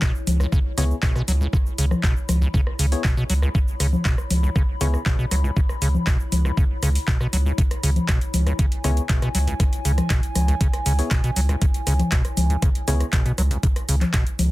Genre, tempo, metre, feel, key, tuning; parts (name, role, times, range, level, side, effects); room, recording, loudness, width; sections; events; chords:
acid house; 119 BPM; 4/4; straight; C# minor; A4 = 440 Hz
acid bass, square; riff; 0.0-14.2 s; C#2 to F#3; -26 LUFS; equal; overdrive, sidechain pumping
booming analog drum machine; drums; 0.0-14.5 s; cabasa, congas, handclaps, hi-hat, rim click; -26 LUFS; left 2 dB
electronic kick drum; drums; 0.0-14.2 s; -20 LUFS; equal
warbly tape-like pad; texture; 0.0-14.5 s; E4 to B5; -34 LUFS; left 1 dB; chorus, built-in reverb, sidechain pumping
saturated sub bass; bass; 0.3-14.5 s; C#2; -20 LUFS; equal; tube saturation, sidechain pumping
percussive organ stab; stabs; 0.8-5.0, 8.8-13.1 s; B3 to C#5; -32 LUFS; left 4 dB; chorus, cassette tape, dub echo
little or no reverb; dense, heavily limited modern master; -19 LUFS; side -18 dB against mid
0.0-14.5 A section
0.0 C#m7